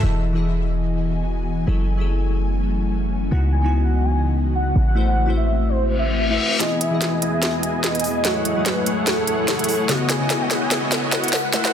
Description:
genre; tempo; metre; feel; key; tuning
future bass; 146 BPM; 4/4; swing 55% on 16ths, half-time; E major; A4 = 440 Hz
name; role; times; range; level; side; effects
glassy digital keys; accompaniment; 0.0-11.7 s; C#3 to D#5; -26 LUFS; left 4 dB; chorus, ping-pong delay
ethereal airy pad; sustained chords; 0.5-11.7 s; E2 to B5; -28 LUFS; left 1 dB; ensemble chorus, built-in reverb
warm 808-style bass; bass; 0.0-6.4 s; E1 to C#2; -20 LUFS; equal; none
warm velvety synth lead; melody; 3.3-11.7 s; A4 to G#5; -26 LUFS; equal; chorus, dub echo
reverse cymbal and riser; sound effects; 6.0-11.7 s; none; -28 LUFS; left 2 dB; none
dense compressed supersaw; riff; 6.6-11.7 s; A3 to G#5; -25 LUFS; equal; low-pass filter, ping-pong delay
trap drum kit; drums; 6.6-11.7 s; hi-hat, snare drum; -22 LUFS; right 1 dB; studio reverb, soft clipping on snare
room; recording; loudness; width
light reverb; dense, heavily limited modern master, high-pass filter; -18 LUFS; side -9 dB against mid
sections
0.0-6.6 A section; 6.6-11.7 B section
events
reverse cymbal 6.0-6.6; build-up 6.6-11.7; drum fill 6.6-11.7; filter sweep on supersaw synth 6.6-11.7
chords
0.0 Emaj7; 1.7 F#m9; 3.3 C#m11; 4.8 Am6; 6.6 Emaj7; 8.2 F#m9; 9.9 C#m11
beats
| 0.03 0.44 0.85 1.26 | 1.67 2.08 2.50 2.91 | 3.32 3.73 4.14 4.55 | 4.96 5.37 5.78 6.20 | 6.61 7.02 7.43 7.84 | 8.25 8.66 9.07 9.48 | 9.89 10.30 10.71 11.13 | 11.54

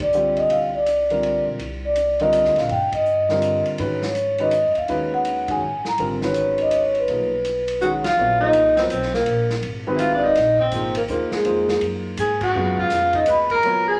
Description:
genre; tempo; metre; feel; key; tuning
modal jazz; 164 BPM; 3/4; swing 64% on 8ths; unclear; A4 = 440 Hz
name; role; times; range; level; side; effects
vibraphone with soft mallets; melody; 0.0-14.0 s; Ab4 to Cb6; -22 LUFS; equal; none
upright bass; bass; 0.0-14.0 s; Ab1 to Ab2; -34 LUFS; equal; none
vintage drum kit; drums; 0.0-13.7 s; crash cymbal, hi-hat, kick drum, ride cymbal, snare drum; -36 LUFS; equal; none
warm baby grand piano; accompaniment; 0.1-14.0 s; Db3 to Eb5; -29 LUFS; equal; none
breathy tenor saxophone; second line; 7.8-14.0 s; Ab3 to Cb5; -25 LUFS; equal; none
room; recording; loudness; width
moderate large studio reverb, RT60 1.1 s; none; -20 LUFS; mono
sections
0.0-8.2 A section; 8.2-14.0 B section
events
band accent 2.9, 5.4, 8.0, 12.4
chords
0.0 Cm11; 3.8 Abm11; 8.2 Bb9sus4; 12.5 Db9sus4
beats
0.13 | 0.50 0.87 1.23 | 1.60 1.96 2.33 | 2.69 3.06 3.43 | 3.79 4.16 4.52 | 4.89 5.25 5.62 | 5.98 6.35 6.71 | 7.08 7.45 7.81 | 8.17 8.54 8.90 | 9.27 9.63 10.00 | 10.36 10.73 11.09 | 11.45 11.82 12.18 | 12.54 12.91 13.27 | 13.64

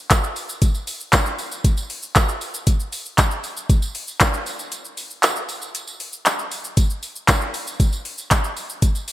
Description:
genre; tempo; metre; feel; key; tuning
pop; 117 BPM; 4/4; straight; none; none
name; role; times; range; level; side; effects
smooth R&B drum kit; drums; 0.1-9.1 s; handclaps, hi-hat, kick drum, shaker; -19 LUFS; equal; gated reverb
tambourine; percussion; 0.1-9.1 s; none; -33 LUFS; right 4 dB; none
room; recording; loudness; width
light reverb; bright 1980s-style digital production; -19 LUFS; side -15 dB against mid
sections
0.0-9.1 A section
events
break 4.7-6.8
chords
none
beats
0.10 | 0.62 1.13 1.64 2.16 | 2.67 3.18 3.69 4.21 | 4.72 5.23 5.75 6.26 | 6.77 7.29 7.80 8.31 | 8.82

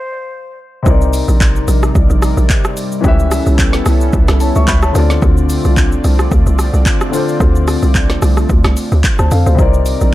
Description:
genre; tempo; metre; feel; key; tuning
amapiano; 110 BPM; 4/4; swing 55% on 16ths; C dorian; A4 = 440 Hz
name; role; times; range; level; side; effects
concert flute; melody; 0.0-0.6 s; C5; -27 LUFS; left 1 dB; tape echo
warm concert grand piano; accompaniment; 0.8-10.1 s; C3 to C#6; -19 LUFS; left 4 dB; none
warm analog pad; sustained chords; 0.9-10.1 s; C3 to D5; -20 LUFS; equal; chorus, sidechain pumping
hollow log drum bass; bass; 0.9-10.1 s; Bb1 to F2; -12 LUFS; equal; none
deep house drum kit; drums; 0.9-10.1 s; handclaps, hi-hat, kick drum, rim click, shaker, snare drum; -15 LUFS; equal; none
room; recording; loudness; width
digital ambience; dark, warm production; -10 LUFS; side -16 dB against mid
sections
0.9-10.1 A section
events
stop 0.0-0.9; drop 0.9-10.1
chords
0.0 N.C.; 0.9 Cm9; 3.0 A7; 5.0 Dm7; 9.6 Cm9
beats
0.32 | 0.86 1.41 1.95 2.50 | 3.04 3.59 4.13 4.68 | 5.22 5.77 6.32 6.86 | 7.41 7.95 8.50 9.04 | 9.59 10.13

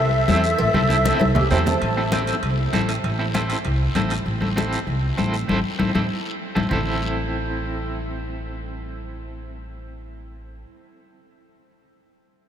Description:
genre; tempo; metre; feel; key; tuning
latin, cumbia; 196 BPM; 4/4; straight; A minor; A4 = 441 Hz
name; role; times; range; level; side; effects
musette accordion; melody; 0.0-2.1 s; E5 to A5; -25 LUFS; left 1 dB; none
warm clarinet; second line; 0.0-2.1 s; G4 to C5; -30 LUFS; right 2 dB; none
upright bass; bass; 0.0-10.6 s; A1 to E2; -25 LUFS; equal; none
electric guitar at the edge of break-up; accompaniment; 0.3-10.6 s; C4 to A4; -26 LUFS; right 1 dB; tremolo
congas; percussion; 0.3-6.8 s; none; -26 LUFS; left 3 dB; none
guiro; percussion; 0.3-6.8 s; none; -37 LUFS; left 5 dB; none
timbales and cowbell; percussion; 0.3-4.3 s; none; -31 LUFS; right 4 dB; none
room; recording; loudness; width
wet huge ambient reverb, RT60 8.1 s; in a vast, echoing space; -19 LUFS; side -9 dB against mid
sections
0.0-1.8 A section; 1.8-6.7 B section; 6.7-9.2 C section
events
drum fill 0.9-1.8; band accent 5.5-6.7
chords
0.0 Am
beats
0.29 | 0.59 0.90 1.20 1.51 | 1.81 2.12 2.43 2.73 | 3.04 3.34 3.65 3.96 | 4.26 4.57 4.88 5.18 | 5.49 5.79 6.10 6.41 | 6.71 7.02 7.33 7.63 | 7.94 8.25 8.55 8.86

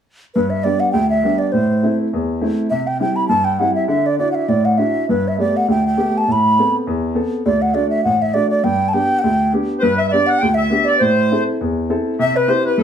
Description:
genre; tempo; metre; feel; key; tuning
celtic folk; 203 BPM; 4/4; swing 56% on 8ths; G major; A4 = 435 Hz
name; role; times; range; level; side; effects
baroque flute; melody; 0.3-12.8 s; B4 to B5; -18 LUFS; right 1 dB; plate reverb
warm upright piano; accompaniment; 0.4-12.8 s; A1 to A4; -18 LUFS; equal; none
accordion; second line; 9.8-12.8 s; A4 to G5; -19 LUFS; left 2 dB; none
room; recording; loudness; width
moderate small room ambience, RT60 0.5 s; small room reverb; -14 LUFS; side -8 dB against mid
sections
0.3-9.8 A section; 9.8-12.8 A section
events
none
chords
0.3 G; 1.5 Am; 2.7 C; 3.9 Dadd9; 5.1 Gadd9; 6.3 Amadd9; 7.5 D; 8.6 G; 11.0 Am; 12.2 C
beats
| 0.35 0.65 0.94 1.24 | 1.53 1.83 2.12 2.42 | 2.72 3.01 3.31 3.61 | 3.90 4.20 4.50 4.79 | 5.09 5.38 5.68 5.98 | 6.27 6.57 6.87 7.16 | 7.46 7.76 8.05 8.35 | 8.64 8.94 9.24 9.53 | 9.83 10.13 10.42 10.72 | 11.01 11.31 11.61 11.90 | 12.20 12.49 12.79

